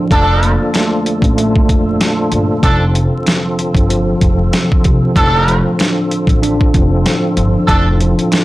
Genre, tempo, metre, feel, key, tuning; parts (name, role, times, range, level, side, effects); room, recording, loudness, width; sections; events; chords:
hip hop, boom-bap hip-hop; 95 BPM; 4/4; swing 58% on 16ths; A4 = 440 Hz
mellow tine electric piano; accompaniment; 0.0-8.4 s; F2 to D4; -17 LUFS; equal; medium stereo tremolo, high-pass filter, low-pass filter
percussive tonewheel organ; sustained chords; 0.0-8.4 s; D3 to A4; -19 LUFS; equal; overdrive, chorus vibrato, slow rotary speaker, high-pass filter, low-pass filter
muted trumpet section; stabs; 0.1-7.9 s; D4 to A4; -15 LUFS; right 1 dB; high-pass filter, low-pass filter, slapback echo, plate reverb
upright bass; bass; 0.1-8.1 s; F1 to C2; -15 LUFS; equal; tube saturation
boom bap sampler-style drum kit; drums; 0.1-8.4 s; hi-hat, kick drum, snare drum; -14 LUFS; equal
finger snap; percussion; 0.7-8.4 s; -29 LUFS; right 3 dB
light reverb; blown-out, overdriven recording, vinyl crackle, overdrive; -10 LUFS; side -17 dB against mid
0.0-8.4 A section
0.1 Bbmaj7/F; 2.6 Dm7/F